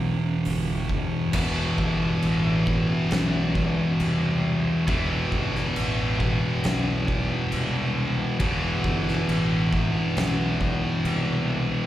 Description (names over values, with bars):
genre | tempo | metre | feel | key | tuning
stoner and doom metal | 68 BPM | 4/4 | straight | unclear | A4 = 438 Hz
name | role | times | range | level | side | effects
thick fuzz guitar | riff | 0.0-11.9 s | E2 to E3 | -25 LUFS | left 2 dB | distortion
thick fuzz guitar | riff | 0.0-1.3 s | E2 to E3 | -30 LUFS | right 7 dB | distortion
fuzz fingered electric bass | bass | 0.0-11.7 s | E1 to C2 | -29 LUFS | right 1 dB | overdrive
oversized low-tuned drum kit | drums | 0.5-11.3 s | crash cymbal, hi-hat, kick drum, snare drum | -30 LUFS | equal | none
tight distorted guitar | riff | 1.3-11.9 s | E2 to E3 | -27 LUFS | right 2 dB | distortion, slapback echo
room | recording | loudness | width
small room ambience | live gig heard through the venue's PA, club reverb | -22 LUFS | side -13 dB against mid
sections
0.0-1.3 A section; 1.3-11.9 B section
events
none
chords
0.0 Em; 1.3 E5